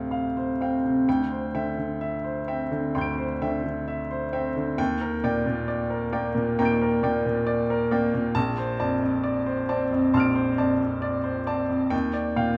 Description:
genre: classical, impressionist solo piano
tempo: 66 BPM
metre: 4/4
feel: uneven beats, rubato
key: unclear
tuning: A4 = 440 Hz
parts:
  - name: clear baby grand piano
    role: solo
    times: 0.0-12.6 s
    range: Bb1 to D7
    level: -26 LUFS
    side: equal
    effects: none
room: wet recital hall reverb, RT60 1.5 s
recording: none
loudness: -26 LUFS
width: mono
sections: 0.0-12.6 A section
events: none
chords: 0.0 Dm7; 1.1 Cadd9/D; 4.8 Ebmaj7; 8.4 Bbmaj9; 11.9 Ebmaj9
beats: 0.12 | 1.07 2.01 2.95 3.88 | 4.79 5.69 6.60 7.48 | 8.37 9.25 10.15 11.03 | 11.93

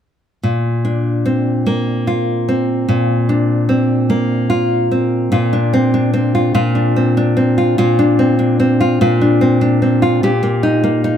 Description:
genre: pop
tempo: 49 BPM (dotted quarters)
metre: 6/8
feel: straight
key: Bb major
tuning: A4 = 440 Hz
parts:
  - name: nylon-string guitar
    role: accompaniment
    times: 0.4-11.2 s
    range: Bb2 to G4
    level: -12 LUFS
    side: equal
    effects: none
room: light reverb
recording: none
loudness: -12 LUFS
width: side -9 dB against mid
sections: 0.4-5.3 A section; 5.3-11.2 B section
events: none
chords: 0.4 Bbadd9; 10.2 Eb/Bb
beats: | 0.43 1.66 | 2.88 4.10 | 5.33 6.56 | 7.79 9.01 | 10.23

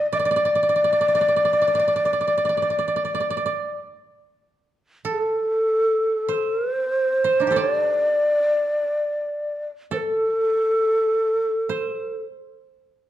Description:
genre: japanese traditional, Japanese chamber music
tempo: 46-52 BPM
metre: 4/4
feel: rubato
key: D in sen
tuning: A4 = 442 Hz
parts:
  - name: breathy mellow long shakuhachi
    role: melody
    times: 0.0-12.2 s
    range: A4 to Eb5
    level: -20 LUFS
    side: equal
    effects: none
  - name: koto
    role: second line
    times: 0.0-13.1 s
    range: D4 to Eb5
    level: -27 LUFS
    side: right 6 dB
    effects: none
room: light reverb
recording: dark, warm production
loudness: -19 LUFS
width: side -12 dB against mid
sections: 0.0-5.1 A section; 5.1-13.1 B section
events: none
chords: none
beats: | 0.12 1.30 2.52 3.80 | 5.07 6.32 7.55 8.74 | 9.91 11.08 12.25

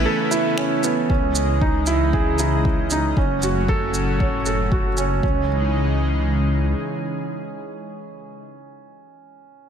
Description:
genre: piano and strings electronica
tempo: 116 BPM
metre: 4/4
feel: straight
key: C# minor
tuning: A4 = 440 Hz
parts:
  - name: rich violin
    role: melody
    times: 0.0-0.5 s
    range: B4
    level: -35 LUFS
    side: left 1 dB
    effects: none
  - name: lush unison pad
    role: sustained chords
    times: 0.0-8.4 s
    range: A2 to D#5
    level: -26 LUFS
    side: left 1 dB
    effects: chorus, sidechain pumping
  - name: felt-muted upright piano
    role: riff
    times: 0.0-9.7 s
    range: B3 to C#5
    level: -24 LUFS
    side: right 4 dB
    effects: ping-pong delay
  - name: dark detuned saw bass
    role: bass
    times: 0.0-6.7 s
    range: F#1 to C#2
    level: -22 LUFS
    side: left 1 dB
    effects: sidechain pumping
  - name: electronic shaker and finger snaps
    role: drums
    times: 0.3-5.1 s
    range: none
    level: -29 LUFS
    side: right 3 dB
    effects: none
  - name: electronic kick drum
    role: drums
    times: 1.1-5.4 s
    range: none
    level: -22 LUFS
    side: left 1 dB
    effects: none
room: light reverb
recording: none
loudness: -18 LUFS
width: side -8 dB against mid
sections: 0.0-1.1 A section; 1.1-5.2 B section; 5.2-9.4 C section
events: drop 0.0-1.1; break 0.1-1.1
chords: 0.0 Aadd9; 1.1 C#madd9; 3.2 F#m; 5.2 C#madd9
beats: 0.06 0.57 | 1.09 1.61 2.13 2.64 | 3.16 3.68 4.20 4.71 | 5.23 5.75 6.26 6.78 | 7.30 7.82 8.33 8.85

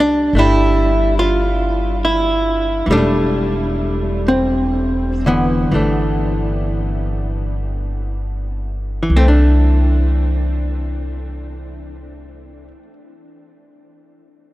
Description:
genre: jazz ballad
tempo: 32-50 BPM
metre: 4/4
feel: swing 68% on 8ths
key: C major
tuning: A4 = 440 Hz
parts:
  - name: archtop guitar, miked and amplified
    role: accompaniment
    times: 0.0-12.9 s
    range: D3 to F4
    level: -17 LUFS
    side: equal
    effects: none
  - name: upright bass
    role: bass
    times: 0.0-12.7 s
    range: E1 to C2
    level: -18 LUFS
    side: equal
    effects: none
room: moderate huge ambient reverb, RT60 8.5 s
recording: in a vast, echoing space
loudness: -14 LUFS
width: side -17 dB against mid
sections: 0.0-9.1 A section; 9.1-14.5 B section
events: slowing down 0.0-9.1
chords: 0.0 C69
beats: 0.32 1.57 | 2.86 4.24 5.72 7.33 | 9.11 10.98 12.85

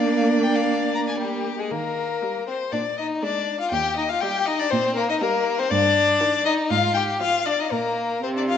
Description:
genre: quick classical-period movement for string quartet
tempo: 120 BPM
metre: 4/4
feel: straight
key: Eb major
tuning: A4 = 441 Hz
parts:
  - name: rich violin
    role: melody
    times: 0.0-8.6 s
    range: G4 to G5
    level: -23 LUFS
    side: left 6 dB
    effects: none
  - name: rich violin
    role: second line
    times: 0.0-8.6 s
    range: G3 to Bb5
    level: -26 LUFS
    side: left 2 dB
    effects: none
  - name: rich viola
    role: accompaniment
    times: 0.0-8.6 s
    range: C3 to Bb3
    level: -26 LUFS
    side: right 3 dB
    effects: none
  - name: rich cello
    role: bass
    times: 0.0-8.1 s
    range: Eb2 to D4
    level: -28 LUFS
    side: right 3 dB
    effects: none
room: wet recital hall reverb, RT60 1.5 s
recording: nothing above 7.9 kHz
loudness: -20 LUFS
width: side -8 dB against mid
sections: 0.0-1.7 A section; 1.7-8.6 B section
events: none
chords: 0.0 Bb; 1.7 Eb; 2.7 Bbadd11; 3.7 Eb; 5.7 Eb/G; 6.7 Fm/Ab; 7.7 Bbadd9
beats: 0.17 0.69 1.20 | 1.72 2.23 2.73 3.23 | 3.73 4.22 4.72 5.22 | 5.71 6.21 6.71 7.21 | 7.72 8.23

